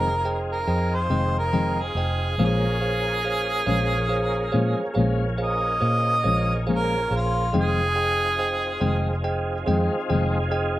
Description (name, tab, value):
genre	slow blues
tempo	47 BPM (dotted quarters)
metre	12/8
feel	straight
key	F minor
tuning	A4 = 440 Hz
part	warm harmonica	melody	0.0-9.2 s	F4 to Eb5	-25 LUFS	right 1 dB	overdrive, slapback echo
part	bell-like tine electric piano	accompaniment	0.0-10.8 s	Ab4 to G5	-28 LUFS	right 2 dB	none
part	clean electric guitar	accompaniment	0.0-10.4 s	F2 to Db4	-26 LUFS	left 4 dB	harmonic tremolo
part	tonewheel organ	sustained chords	0.0-10.8 s	Bb3 to Ab4	-32 LUFS	equal	slow rotary speaker, chorus vibrato
part	vintage muted fingered electric bass	bass	0.0-10.8 s	F1 to Bb2	-25 LUFS	equal	none
room	little or no reverb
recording	recorded outdoors, with no room sound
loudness	-21 LUFS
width	side -15 dB against mid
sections	0.0-10.8 A section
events	harmonica solo 0.0-10.8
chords	0.0 Fm7; 2.4 Bbm7; 7.5 Fm7